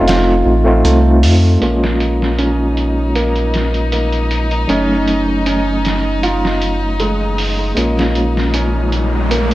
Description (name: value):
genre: trip hop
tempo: 78 BPM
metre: 4/4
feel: straight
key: Bb minor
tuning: A4 = 445 Hz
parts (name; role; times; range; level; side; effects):
- overdriven tine electric piano; accompaniment; 0.0-9.5 s; Gb3 to F4; -18 LUFS; equal; fast tremolo, vintage 12-bit sampler grit, low-pass filter, tape echo
- felt-muted upright piano; arpeggios; 0.0-9.5 s; Ab3 to F4; -20 LUFS; right 2 dB; low-pass filter, tape echo
- warm sub bass; bass; 0.0-9.5 s; F1 to F2; -16 LUFS; equal; none
- trip hop sampler-style drum kit; drums; 0.1-9.5 s; hi-hat, snare drum; -22 LUFS; equal; low-pass filter on snare, low-pass filter on hats, low-pass filter on kick, low-pass filter on room
- warm chamber string section; sustained chords; 1.6-9.5 s; Eb4; -22 LUFS; left 1 dB; low-pass filter
- riser; sound effects; 8.3-9.5 s; none; -23 LUFS; equal; none
room: light reverb, digital ambience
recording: none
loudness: -12 LUFS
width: side -16 dB against mid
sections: 0.0-1.6 A section; 1.6-9.5 B section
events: filter sweep on felt piano 1.6-9.5; riser 8.3-9.5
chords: 0.1 F7; 1.6 Bbm7; 4.7 Gbm6; 7.8 Bbm7